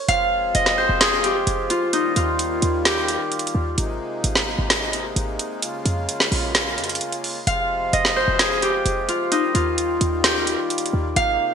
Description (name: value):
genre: hip hop, trap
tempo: 130 BPM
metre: 4/4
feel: half-time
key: unclear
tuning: A4 = 440 Hz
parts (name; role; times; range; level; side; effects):
- Celtic harp; melody; 0.0-11.5 s; Eb4 to F5; -21 LUFS; equal; none
- accordion; sustained chords; 0.1-11.5 s; C3 to F4; -29 LUFS; left 1 dB; light tremolo tuning
- short 808-style bass; bass; 0.1-11.4 s; F1 to F2; -26 LUFS; equal; none
- trap drum kit; drums; 0.1-11.3 s; hi-hat, snare drum; -21 LUFS; right 1 dB; vintage 12-bit sampler grit, gated reverb
room: moderate lush hall reverb, RT60 1.8 s, studio reverb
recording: bright 1980s-style digital production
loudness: -18 LUFS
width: side -7 dB against mid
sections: 0.0-11.5 A section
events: break 3.8-7.5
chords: 0.1 Fm; 1.9 Ebadd9; 3.8 Abadd9; 5.6 Bbm7; 7.5 Fm; 9.3 Ebadd9